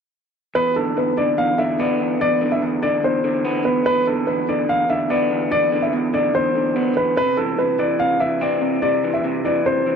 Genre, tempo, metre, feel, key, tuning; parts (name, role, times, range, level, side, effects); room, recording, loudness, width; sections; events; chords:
hip hop; 145 BPM; 4/4; half-time; A4 = 444 Hz
dark concert grand piano; melody; 0.6-10.0 s; A4 to F5; -19 LUFS; left 1 dB; digital delay
electric guitar through a small old amp; accompaniment; 0.6-10.0 s; E2 to C4; -21 LUFS; right 1 dB
moderate plate reverb, RT60 3.5 s; lossy compression artefacts; -17 LUFS; side -6 dB against mid
0.6-10.0 A section
0.6 E5; 7.2 C